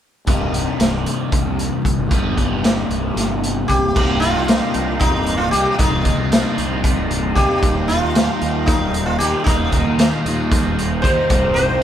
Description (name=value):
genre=psychedelic rock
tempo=228 BPM (eighths)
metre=7/8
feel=straight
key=C dorian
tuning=A4 = 438 Hz
part: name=crunchy overdriven guitar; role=riff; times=0.3-11.8 s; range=C2 to Eb4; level=-21 LUFS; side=left 1 dB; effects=phaser
part: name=fuzz fingered electric bass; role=bass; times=0.3-11.8 s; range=C1 to Eb2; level=-23 LUFS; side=right 1 dB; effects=overdrive
part: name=raw garage drum kit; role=drums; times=0.3-11.7 s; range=crash cymbal, hi-hat, kick drum, snare drum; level=-19 LUFS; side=equal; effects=none
part: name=sitar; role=melody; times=3.7-11.8 s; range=Eb4 to C5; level=-20 LUFS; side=equal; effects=none
part: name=combo organ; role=sustained chords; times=4.0-11.8 s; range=Eb4 to C6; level=-30 LUFS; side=right 3 dB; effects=none
room=light reverb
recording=band playing live in one room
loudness=-15 LUFS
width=side -10 dB against mid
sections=0.3-4.0 A section; 4.0-11.8 B section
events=none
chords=0.3 Cm7; 7.6 Eb6; 11.3 Cm7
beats=| 0.28 0.54 0.80 1.06 1.33 1.59 1.85 | 2.12 2.38 2.64 2.90 3.17 3.43 3.69 | 3.95 4.22 4.48 4.74 5.00 5.27 5.53 | 5.79 6.05 6.32 6.58 6.84 7.11 7.37 | 7.63 7.89 8.16 8.42 8.68 8.94 9.21 | 9.47 9.73 9.99 10.26 10.52 10.78 11.04 | 11.30 11.56 11.83